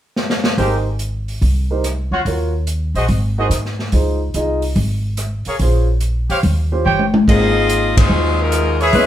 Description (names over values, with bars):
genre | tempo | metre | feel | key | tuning
jazz, big band swing | 143 BPM | 4/4 | swing 68% on 8ths | Ab major | A4 = 439 Hz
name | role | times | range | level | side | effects
open jazz drum kit | drums | 0.2-9.1 s | crash cymbal, hi-hat, kick drum, ride cymbal, rim click, snare drum, toms | -19 LUFS | equal | none
warm concert grand piano | accompaniment | 0.6-9.1 s | Bb3 to Eb5 | -22 LUFS | right 1 dB | none
clear trumpet section | stabs | 0.6-9.1 s | F4 to G5 | -19 LUFS | right 1 dB | none
upright bass | bass | 0.6-9.1 s | G1 to Ab2 | -18 LUFS | equal | none
bright saxophone section | melody | 7.3-9.1 s | Ab3 to Eb5 | -17 LUFS | left 3 dB | none
room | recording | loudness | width
moderate studio reverb, RT60 0.8 s | band playing live in one room | -15 LUFS | side -11 dB against mid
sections
0.6-7.3 A section; 7.3-9.1 B section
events
drum fill 0.2-0.6, 6.9-7.3; band accent 7.9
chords
0.0 N.C.; 0.6 Abmaj9; 2.2 Ebm9; 3.1 Ab7; 3.9 Dbmaj9; 5.6 Bbm7; 6.4 Eb13; 7.3 Ab6